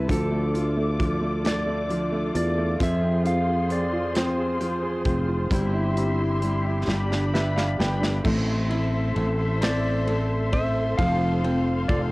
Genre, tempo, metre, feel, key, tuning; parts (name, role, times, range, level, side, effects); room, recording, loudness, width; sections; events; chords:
six-eight pop ballad; 44 BPM (dotted quarters); 6/8; straight; A4 = 440 Hz
clean lap steel guitar; melody; 0.0-12.0 s; A4 to F5; -30 LUFS; equal; cassette tape
clear upright piano; accompaniment; 0.0-12.1 s; D3 to G5; -30 LUFS; right 1 dB; cassette tape
muted studio string section; sustained chords; 0.0-12.1 s; F4 to D6; -32 LUFS; left 1 dB; cassette tape
fingerpicked steel-string acoustic guitar; arpeggios; 0.0-12.1 s; G2 to A4; -30 LUFS; left 1 dB; cassette tape
sustaining fretless electric bass; bass; 0.0-12.1 s; F1 to F2; -26 LUFS; equal
modern studio drum kit; drums; 0.1-12.1 s; crash cymbal, hi-hat, kick drum, ride cymbal, snare drum; -29 LUFS; equal
light reverb, studio reverb; home recording on cassette; -22 LUFS; side -21 dB against mid
0.0-8.3 A section; 8.3-12.1 B section
drum fill 6.9-8.3; upright piano fill 6.9-8.3
0.1 Dm; 2.8 Fm; 5.5 C/G; 6.9 G; 8.3 Am; 11.0 F